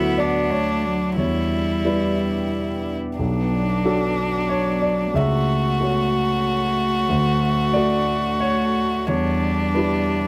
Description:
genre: neoclassical piano and strings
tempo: 91 BPM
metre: 3/4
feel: rubato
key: B minor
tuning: A4 = 440 Hz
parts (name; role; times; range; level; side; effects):
- warm violin; melody; 0.0-10.3 s; D4 to F#4; -26 LUFS; equal; none
- rich cello; second line; 0.0-10.3 s; F#3 to B3; -27 LUFS; equal; none
- warm grand piano; accompaniment; 0.0-10.3 s; B1 to F#5; -25 LUFS; equal; none
- deep dark ambient pad; sustained chords; 0.9-10.3 s; A3 to C#5; -36 LUFS; equal; none
room: moderate booth ambience, RT60 0.2 s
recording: close, detailed microphones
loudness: -21 LUFS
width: mono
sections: 0.0-10.3 A section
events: none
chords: 0.0 D; 1.2 Em7; 3.2 Bm7; 5.2 F#m7/C#; 7.1 D; 9.1 Em7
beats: 0.53 | 1.19 1.86 2.52 | 3.19 3.85 4.50 | 5.16 5.80 6.45 | 7.09 7.75 8.41 | 9.08 9.76

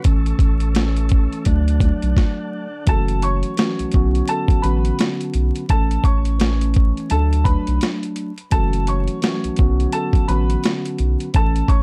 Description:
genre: hip hop, boom-bap hip-hop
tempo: 85 BPM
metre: 4/4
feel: swing 61% on 16ths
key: unclear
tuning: A4 = 440 Hz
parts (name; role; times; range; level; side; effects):
- mellow tine electric piano; accompaniment; 0.0-11.8 s; D3 to F#4; -27 LUFS; equal; high-pass filter, low-pass filter
- tonewheel organ; sustained chords; 0.0-2.9 s; D3 to F#5; -35 LUFS; equal; fast rotary speaker, high-pass filter, low-pass filter
- boom bap sampler-style drum kit; drums; 0.0-11.8 s; hi-hat, kick drum, snare drum; -20 LUFS; equal; vintage 12-bit sampler grit
- saturated sub bass; bass; 0.1-11.8 s; F#1 to D2; -22 LUFS; equal; none
- bright upright piano; melody; 2.9-11.8 s; A4 to C#6; -28 LUFS; equal; high-pass filter, low-pass filter
room: little or no reverb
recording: dark, warm production, vinyl crackle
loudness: -19 LUFS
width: mono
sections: 0.0-2.9 A section; 2.9-11.8 B section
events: stop 2.2-2.9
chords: 0.0 A; 1.5 D; 2.9 F#m7; 3.9 Bmadd9; 5.7 A; 7.1 D; 8.5 F#m7; 9.6 Bmadd9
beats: | 0.05 0.76 1.46 2.17 | 2.87 3.58 4.29 4.99 | 5.70 6.40 7.11 7.81 | 8.52 9.23 9.93 10.64 | 11.34

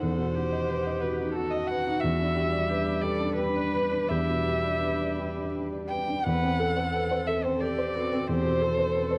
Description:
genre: neoclassical piano and strings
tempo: 81-91 BPM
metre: 3/4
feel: rubato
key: E minor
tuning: A4 = 440 Hz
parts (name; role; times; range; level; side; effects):
- muted violin; melody; 0.0-9.2 s; A4 to G5; -32 LUFS; equal; none
- felt-muted upright piano; accompaniment; 0.0-9.2 s; E2 to D#5; -31 LUFS; equal; none
- muted viola; accompaniment; 0.0-9.2 s; F#4 to B4; -37 LUFS; equal; none
- muted studio string section; sustained chords; 0.0-9.2 s; D#3 to F#5; -39 LUFS; equal; none
room: moderate spring reverb, RT60 1.7 s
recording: dark, warm production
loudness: -28 LUFS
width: mono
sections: 0.0-6.2 A section; 6.2-9.2 B section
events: none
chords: 0.0 B/E; 2.0 Em7; 6.2 Amadd9/E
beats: | 0.03 0.69 1.36 | 2.02 2.69 3.38 | 4.11 4.82 5.53 | 6.24 6.93 7.61 | 8.28 8.94

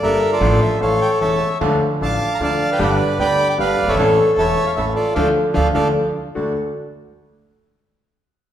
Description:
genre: tango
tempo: 152 BPM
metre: 3/4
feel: rubato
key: D harmonic minor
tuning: A4 = 437 Hz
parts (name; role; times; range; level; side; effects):
- bandoneon; melody; 0.0-5.9 s; F4 to D6; -18 LUFS; right 1 dB; none
- clear baby grand piano; accompaniment; 0.0-6.5 s; E1 to A4; -19 LUFS; left 2 dB; none
- upright bass; bass; 0.0-6.5 s; E1 to D2; -24 LUFS; right 1 dB; none
- bandoneon; stabs; 1.6-6.5 s; A3 to A4; -26 LUFS; right 4 dB; none
room: wet recital hall reverb, RT60 1.4 s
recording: recorded in a church or concert hall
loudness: -15 LUFS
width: side -10 dB against mid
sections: 0.0-6.4 A section; 6.4-7.5 B section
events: band accent 5.2-6.4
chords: 0.4 Dm/A; 0.8 A; 1.6 Dm; 2.8 G; 4.0 A; 5.2 Dm; 6.4 D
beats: 0.02 | 0.42 0.81 1.21 | 1.61 2.00 2.40 | 2.79 3.19 3.58 | 3.98 4.37 4.77 | 5.17 5.56 5.96 | 6.36

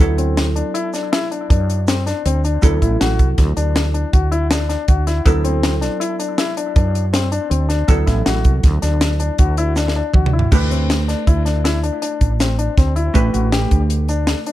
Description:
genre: progressive instrumental, band music in an uneven meter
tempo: 160 BPM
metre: 7/4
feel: straight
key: D mixolydian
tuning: A4 = 445 Hz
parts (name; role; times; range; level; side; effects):
- vintage hollow-body jazz guitar; accompaniment; 0.0-14.5 s; F#3 to B4; -24 LUFS; right 3 dB; none
- woody fretless electric bass; bass; 0.0-14.3 s; A1 to F#2; -18 LUFS; right 1 dB; none
- crisp fusion drum kit; drums; 0.0-14.5 s; crash cymbal, hi-hat, kick drum, snare drum, toms; -17 LUFS; equal; none
- warm grand piano; arpeggios; 0.2-14.5 s; C4 to G4; -23 LUFS; left 5 dB; tape echo
- egg shaker; percussion; 0.9-14.3 s; none; -36 LUFS; right 7 dB; none
room: little or no reverb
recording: dark, warm production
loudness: -14 LUFS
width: side -14 dB against mid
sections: 0.0-10.5 A section; 10.5-14.5 B section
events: drum fill 9.8-10.5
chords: 0.0 D7; 10.5 D7sus4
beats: 0.37 0.75 1.12 1.50 1.88 2.25 | 2.63 3.00 3.38 3.76 4.13 4.51 4.88 | 5.26 5.64 6.01 6.39 6.76 7.14 7.51 | 7.89 8.27 8.64 9.02 9.39 9.77 10.14 | 10.52 10.89 11.27 11.65 12.02 12.40 12.78 | 13.15 13.53 13.90 14.28

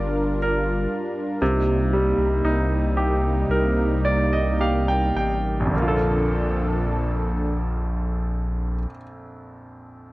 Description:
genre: pop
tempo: 52-61 BPM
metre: 4/4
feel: straight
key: Bb major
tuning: A4 = 440 Hz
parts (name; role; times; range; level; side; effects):
- bright grand piano; accompaniment; 0.0-10.1 s; Bb1 to G5; -25 LUFS; right 1 dB; none
- warm analog pad; sustained chords; 0.0-8.9 s; Bb2 to Bb4; -25 LUFS; equal; chorus
- saturated sub bass; bass; 0.0-8.9 s; G1 to C2; -24 LUFS; equal; none
room: small room ambience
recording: worn, warbling old tape, cassette tape, warbly pitch drift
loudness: -20 LUFS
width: side -19 dB against mid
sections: 0.0-5.7 A section; 5.7-10.1 B section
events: slowing down 0.0-5.7; grand piano fill 3.5-5.7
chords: 0.0 Gm7; 1.4 Cm7; 5.7 Bbmaj7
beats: 0.42 | 1.41 2.43 3.49 4.59 | 5.73 6.89 8.04 9.18

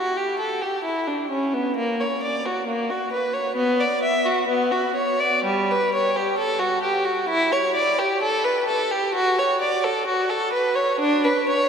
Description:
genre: classical, baroque-style suite movement for unaccompanied violin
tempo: 66 BPM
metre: 4/4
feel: rubato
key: unclear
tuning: A4 = 440 Hz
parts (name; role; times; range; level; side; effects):
- rich violin; solo; 0.0-11.7 s; G3 to E5; -20 LUFS; equal; none
room: wet cathedral reverb, RT60 4.7 s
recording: none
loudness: -20 LUFS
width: side -6 dB against mid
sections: 0.0-11.7 A section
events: none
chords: none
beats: 0.87 | 1.78 2.68 3.58 4.49 | 5.44 6.37 7.29 8.22 | 9.14 10.06 10.99

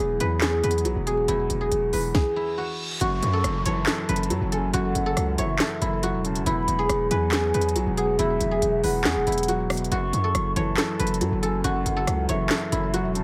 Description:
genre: hip hop, trap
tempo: 139 BPM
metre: 4/4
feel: half-time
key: F# minor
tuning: A4 = 440 Hz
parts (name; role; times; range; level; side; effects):
- guzheng; melody; 0.0-13.2 s; E4 to C#5; -29 LUFS; equal; low-pass filter, delay
- felt-muted upright piano; accompaniment; 0.0-13.2 s; E2 to F#3; -33 LUFS; equal; low-pass filter
- dark analog pad; sustained chords; 0.1-13.2 s; F#3 to A4; -37 LUFS; equal; none
- distorted 808-style bass; bass; 0.0-13.2 s; E1 to F#2; -30 LUFS; equal; distortion
- trap drum kit; drums; 0.2-13.2 s; handclaps, hi-hat, kick drum, rim click, snare drum; -29 LUFS; equal; none
- reverse cymbal and downlifter; sound effects; 2.4-6.5 s; none; -40 LUFS; equal; none
- mellow hollow concert flute; second line; 3.0-13.2 s; E5 to C#6; -33 LUFS; equal; delay
room: studio reverb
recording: vinyl crackle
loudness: -24 LUFS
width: mono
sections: 0.0-3.0 A section; 3.0-13.2 B section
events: reverse cymbal 2.4-3.0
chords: 0.0 Eadd9; 3.0 F#m7; 6.5 Eadd9; 9.9 F#m7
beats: 0.42 0.85 | 1.28 1.71 2.15 2.58 | 3.01 3.44 3.87 4.30 | 4.74 5.17 5.60 6.03 | 6.46 6.89 7.33 7.76 | 8.19 8.62 9.05 9.48 | 9.92 10.35 10.78 11.21 | 11.64 12.07 12.51 12.94

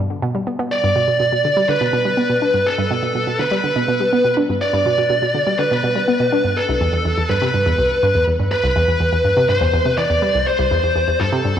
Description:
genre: ambient, sequencer-driven space music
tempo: 123 BPM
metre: 4/4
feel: straight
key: unclear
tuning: A4 = 439 Hz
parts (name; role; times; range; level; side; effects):
- hollow square pluck; riff; 0.0-11.6 s; C2 to D4; -19 LUFS; equal; chorus, phaser, tape echo
- high-gain lead guitar; melody; 0.7-11.6 s; A4 to D5; -17 LUFS; equal; distortion, tape echo
room: wet plate reverb, RT60 2.5 s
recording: cassette tape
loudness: -15 LUFS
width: side -9 dB against mid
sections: 0.0-11.6 A section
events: none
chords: 0.0 G; 6.6 C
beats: 0.22 | 0.71 1.20 1.69 2.17 | 2.66 3.15 3.64 4.13 | 4.61 5.10 5.59 6.08 | 6.57 7.05 7.54 8.03 | 8.52 9.00 9.49 9.98 | 10.47 10.96 11.44

